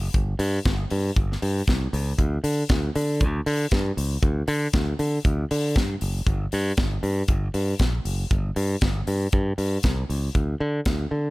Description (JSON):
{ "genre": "disco", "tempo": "118 BPM", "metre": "4/4", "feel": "straight", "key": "unclear", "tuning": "A4 = 439 Hz", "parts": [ { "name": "modern bright fingered electric bass", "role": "bass", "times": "0.0-11.3 s", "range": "F#1 to D3", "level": "-24 LUFS", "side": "equal", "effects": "none" }, { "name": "tight funk drum kit", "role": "drums", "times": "0.1-11.0 s", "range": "hi-hat, kick drum, snare drum", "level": "-25 LUFS", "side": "equal", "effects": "none" } ], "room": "little or no reverb", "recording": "none", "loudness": "-22 LUFS", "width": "side -22 dB against mid", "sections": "0.0-10.4 A section", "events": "none", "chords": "none" }